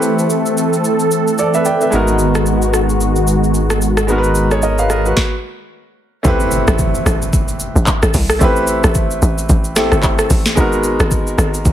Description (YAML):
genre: amapiano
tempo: 111 BPM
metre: 4/4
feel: swing 58% on 16ths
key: unclear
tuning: A4 = 439 Hz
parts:
  - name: clear grand piano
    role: accompaniment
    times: 0.0-11.7 s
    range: G#3 to G5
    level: -18 LUFS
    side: right 1 dB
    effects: none
  - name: warm analog pad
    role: sustained chords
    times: 0.0-5.1 s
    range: D#3 to A4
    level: -16 LUFS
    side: equal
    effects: chorus, sidechain pumping
  - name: afro-pop drum kit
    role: drums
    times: 0.0-11.7 s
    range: handclaps, hi-hat, kick drum, rim click, shaker, snare drum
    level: -17 LUFS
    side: equal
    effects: overdrive
  - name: sub bass with octave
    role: bass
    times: 1.9-5.1 s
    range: G#1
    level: -18 LUFS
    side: equal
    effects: none
  - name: tight log drum bass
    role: bass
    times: 6.2-11.7 s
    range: G1 to C2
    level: -17 LUFS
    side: equal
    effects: none
  - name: impact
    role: sound effects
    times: 6.2-8.4 s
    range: none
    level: -24 LUFS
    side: equal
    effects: none
room: light reverb, digital ambience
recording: heavily compressed radio sound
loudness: -12 LUFS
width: side -11 dB against mid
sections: 0.0-6.2 A section; 6.2-11.7 B section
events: stop 5.2-6.2; drop 6.2-11.7; impact 6.2-8.4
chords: 0.0 Am7; 1.9 G#m7; 6.2 Am7; 10.6 G#m7